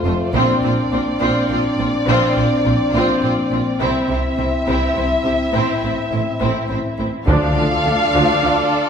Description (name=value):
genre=cinematic, epic orchestral film score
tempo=69 BPM (dotted quarters)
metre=12/8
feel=straight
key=D minor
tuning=A4 = 440 Hz
part: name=warm symphonic violin section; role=melody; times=0.0-8.9 s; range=C5 to F5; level=-23 LUFS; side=left 1 dB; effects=none
part: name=warm French horn section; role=sustained chords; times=0.0-8.9 s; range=A3 to F4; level=-21 LUFS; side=left 2 dB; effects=none
part: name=rich symphonic violin section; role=second line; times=0.1-8.9 s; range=E4 to D5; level=-25 LUFS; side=left 2 dB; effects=none
part: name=rich symphonic viola section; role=accompaniment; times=0.1-8.5 s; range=F3 to D4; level=-23 LUFS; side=right 1 dB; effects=none
part: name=clear symphonic double bass section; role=bass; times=0.1-8.5 s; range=F1 to D2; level=-24 LUFS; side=right 2 dB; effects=none
part: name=rich symphonic cello section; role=bass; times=0.1-8.5 s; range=F2 to D3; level=-25 LUFS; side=right 2 dB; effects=none
part: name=solo taiko drums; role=drums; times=0.3-1.5, 7.3-7.8 s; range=none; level=-21 LUFS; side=equal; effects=none
part: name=rich symphonic string section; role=sustained chords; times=7.3-8.9 s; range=D4 to D5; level=-23 LUFS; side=equal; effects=none
part: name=warm tuba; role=bass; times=7.3-8.6 s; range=D2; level=-25 LUFS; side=right 2 dB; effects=none
part: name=timpani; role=percussion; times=7.3-8.1 s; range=D3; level=-24 LUFS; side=equal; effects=none
room=wet recital hall reverb, RT60 1.7 s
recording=recorded in a church or concert hall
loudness=-15 LUFS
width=side -7 dB against mid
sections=0.0-7.3 A section; 7.3-8.9 B section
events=build-up 0.0-7.3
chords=0.3 Bbadd9; 3.8 C; 5.5 Am; 7.3 Dm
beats=| 0.34 1.21 2.08 2.94 | 3.81 4.68 5.54 6.41 | 7.28 8.14